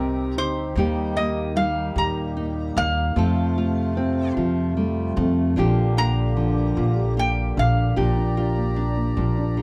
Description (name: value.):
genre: acoustic folk duo or small band.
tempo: 50 BPM (dotted quarters).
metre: 6/8.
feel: straight.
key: unclear.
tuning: A4 = 440 Hz.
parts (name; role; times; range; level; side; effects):
lap resonator guitar; melody; 0.0-8.0 s; Bb4 to Bb5; -28 LUFS; equal; none.
nylon-string guitar; accompaniment; 0.0-9.6 s; Bb2 to A4; -29 LUFS; equal; none.
hand-pumped harmonium; sustained chords; 0.0-9.6 s; C3 to Bb5; -35 LUFS; equal; none.
felt-muted upright piano; arpeggios; 0.0-9.6 s; F3 to G4; -30 LUFS; equal; none.
upright bass; bass; 0.0-9.6 s; Bb1 to F2; -26 LUFS; equal; none.
room: light reverb.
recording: close, detailed microphones.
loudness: -22 LUFS.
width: mono.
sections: 0.0-8.0 A section; 8.0-9.6 B section.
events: resonator guitar played with a steel bar solo 0.0-8.0.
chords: 0.0 Cm; 0.8 Eb; 3.2 F; 5.6 Bb6.